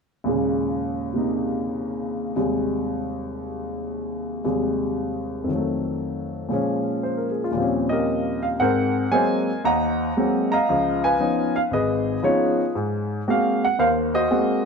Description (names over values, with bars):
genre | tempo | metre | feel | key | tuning
solo jazz | 116 BPM | 4/4 | swing 68% on 8ths | Ab mixolydian from 8.6 s | A4 = 440 Hz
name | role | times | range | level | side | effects
warm grand piano | solo | 0.2-14.7 s | Ab1 to Bb5 | -21 LUFS | equal | none
room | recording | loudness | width
moderate echo chamber reverb, RT60 2.0 s | none | -21 LUFS | side -5 dB against mid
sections
0.3-8.6 A section; 8.6-14.7 B section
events
none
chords
0.3 Eb7sus4; 2.4 Abmaj7/Eb; 5.5 F7b9; 6.5 Bbm7; 7.6 Eb13; 8.6 Ab9; 10.7 Db9; 12.7 Ab9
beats
| 0.28 0.80 1.32 1.84 | 2.36 2.88 3.40 3.92 | 4.45 4.96 5.49 6.01 | 6.53 7.05 7.57 8.08 | 8.60 9.12 9.64 10.16 | 10.68 11.19 11.71 12.23 | 12.75 13.27 13.78 14.30